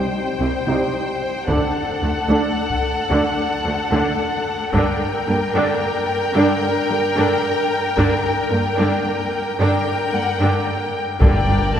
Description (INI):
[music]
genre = cinematic, hybrid orchestral and electronic film score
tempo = 74 BPM (dotted quarters)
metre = 6/8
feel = straight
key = G harmonic minor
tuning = A4 = 441 Hz
[part]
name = clear symphonic violin section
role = second line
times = 0.0-11.8 s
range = A4 to G5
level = -21 LUFS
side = left 2 dB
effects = none
[part]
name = warm symphonic viola section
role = accompaniment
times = 0.0-11.8 s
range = D3 to Eb4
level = -22 LUFS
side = right 1 dB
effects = low-pass filter
[part]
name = rich symphonic cello section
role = bass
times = 0.4-11.8 s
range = C2 to G2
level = -23 LUFS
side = right 1 dB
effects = none
[part]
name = taiko ensemble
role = drums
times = 1.5-11.7 s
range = none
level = -21 LUFS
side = equal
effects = none
[part]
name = rich symphonic violin section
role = melody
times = 10.1-11.8 s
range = F#5 to A5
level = -24 LUFS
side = left 5 dB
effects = low-pass filter
[part]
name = detuned saw bass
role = bass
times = 11.2-11.8 s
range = G1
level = -23 LUFS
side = equal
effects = none
[part]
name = warm symphonic double bass section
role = bass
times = 11.2-11.8 s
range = G1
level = -24 LUFS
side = right 2 dB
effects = none
[sound]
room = wet cathedral reverb, RT60 4.4 s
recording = recorded in a church or concert hall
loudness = -17 LUFS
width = side -9 dB against mid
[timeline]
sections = 0.0-11.2 A section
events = build-up 0.0-11.2; filter sweep 0.0-11.2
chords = 0.0 Cm; 1.5 D; 4.7 Gm